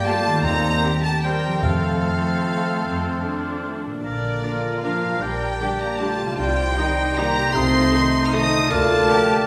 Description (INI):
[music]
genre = classical, orchestral ballroom waltz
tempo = 152 BPM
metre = 3/4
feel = uneven beats, rubato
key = Bb major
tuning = A4 = 439 Hz
[part]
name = warm chamber violin section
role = melody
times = 0.0-9.5 s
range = D5 to F6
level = -29 LUFS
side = equal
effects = none
[part]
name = clear clarinet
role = second line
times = 0.0-9.5 s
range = Bb3 to Eb4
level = -35 LUFS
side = equal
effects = none
[part]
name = concert flute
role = second line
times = 0.0-9.5 s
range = Eb6 to G6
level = -32 LUFS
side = equal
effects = none
[part]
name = warm oboe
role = second line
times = 0.0-9.5 s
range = Bb4 to D5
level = -33 LUFS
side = equal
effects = none
[part]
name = warm studio violin section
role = second line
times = 0.0-9.5 s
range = D5 to Eb6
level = -33 LUFS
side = equal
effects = none
[part]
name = mellow bassoon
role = accompaniment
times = 0.0-9.5 s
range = G3 to Bb3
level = -31 LUFS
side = equal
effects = none
[part]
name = mellow French horn section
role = sustained chords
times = 0.0-9.5 s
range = D3 to Eb4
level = -28 LUFS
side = equal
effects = none
[part]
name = concert harp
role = arpeggios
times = 0.0-9.5 s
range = G2 to C5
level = -30 LUFS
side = equal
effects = none
[part]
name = warm chamber cello section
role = bass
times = 0.0-9.5 s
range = Eb4 to Bb4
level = -32 LUFS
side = equal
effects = none
[part]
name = rich symphonic viola section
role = accompaniment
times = 0.1-9.2 s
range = A3 to Bb4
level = -35 LUFS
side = equal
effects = none
[part]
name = mellow trombone section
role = sustained chords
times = 0.1-9.2 s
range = D3 to C4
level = -38 LUFS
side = equal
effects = none
[part]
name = rich chamber double bass section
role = bass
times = 0.4-9.0 s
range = Bb1 to F2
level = -30 LUFS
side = equal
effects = none
[part]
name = timpani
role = percussion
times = 1.6-2.2 s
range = F2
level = -29 LUFS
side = equal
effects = none
[sound]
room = wet recital hall reverb, RT60 1.5 s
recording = heard from further back in the room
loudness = -21 LUFS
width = mono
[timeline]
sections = 0.0-9.5 A section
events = none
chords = 0.4 Cm7/Eb; 1.6 F; 4.0 Bb; 5.2 Gm/Bb; 6.4 Cm; 7.6 Adim/C; 8.7 Bb/D